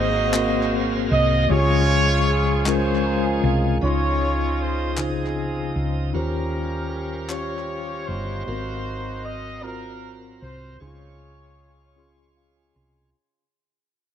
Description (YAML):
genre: slow gospel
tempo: 52 BPM (dotted quarters)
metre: 6/8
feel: straight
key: Db major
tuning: A4 = 439 Hz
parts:
  - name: warm horn section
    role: melody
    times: 0.0-12.3 s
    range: C4 to Eb5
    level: -25 LUFS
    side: right 1 dB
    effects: analog delay
  - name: mellow tine electric piano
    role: accompaniment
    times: 0.0-13.2 s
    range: Ab2 to C6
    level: -25 LUFS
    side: left 3 dB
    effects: medium stereo tremolo, analog delay
  - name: bright tonewheel organ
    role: sustained chords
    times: 0.0-13.1 s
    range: Db3 to F5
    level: -34 LUFS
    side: right 4 dB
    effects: slow rotary speaker, overdrive
  - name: hollow-body short-scale fingered electric bass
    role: bass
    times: 0.0-13.1 s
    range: G1 to Eb2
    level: -25 LUFS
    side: equal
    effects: none
  - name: group handclap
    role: percussion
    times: 0.3-7.7 s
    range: none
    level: -30 LUFS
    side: left 2 dB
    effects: analog delay
room: light reverb, small room reverb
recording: echo-heavy mix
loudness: -20 LUFS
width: side -9 dB against mid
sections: 0.0-3.8 A section; 3.8-13.1 B section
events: tine electric piano fill 2.7-3.8, 12.0-13.1; fade-out 3.8-13.1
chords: 0.0 Ab13; 1.5 Dbmaj7; 3.8 Dbmaj9; 6.1 Eb13; 8.5 Ab13; 10.8 Dbmaj7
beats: 0.33 | 1.50 2.66 | 3.82 4.98 | 6.14 7.31 | 8.47 9.64 | 10.80 11.97